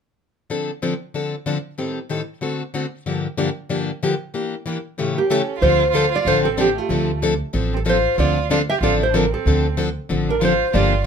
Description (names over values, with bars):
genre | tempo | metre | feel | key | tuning
acoustic string swing (jazz manouche) | 188 BPM | 4/4 | swing 60% on 8ths | D minor | A4 = 440 Hz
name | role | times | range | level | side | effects
picked plugged-in steel-string acoustic guitar | accompaniment | 0.5-10.9 s | G2 to A4 | -21 LUFS | left 3 dB | none
nylon-string guitar | melody | 5.2-11.0 s | F4 to E5 | -20 LUFS | right 1 dB | none
warm violin | second line | 5.2-11.0 s | A3 to G4 | -24 LUFS | right 9 dB | none
upright bass | bass | 5.6-11.1 s | G1 to D2 | -22 LUFS | right 1 dB | none
room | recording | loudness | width
light reverb | minimal, uncompressed stereo recording | -18 LUFS | side -7 dB against mid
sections
0.5-5.6 A section; 5.6-11.1 B section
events
none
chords
0.5 Dm7; 1.8 Am7b5; 2.4 D7; 3.1 Gm7; 4.3 Em7b5; 5.0 A7; 5.6 Dm7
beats
| 0.50 0.82 1.14 1.46 | 1.78 2.10 2.42 2.74 | 3.06 3.38 3.70 4.02 | 4.34 4.66 4.98 5.30 | 5.62 5.94 6.26 6.58 | 6.90 7.22 7.54 7.86 | 8.18 8.50 8.82 9.14 | 9.46 9.78 10.09 10.41 | 10.73 11.05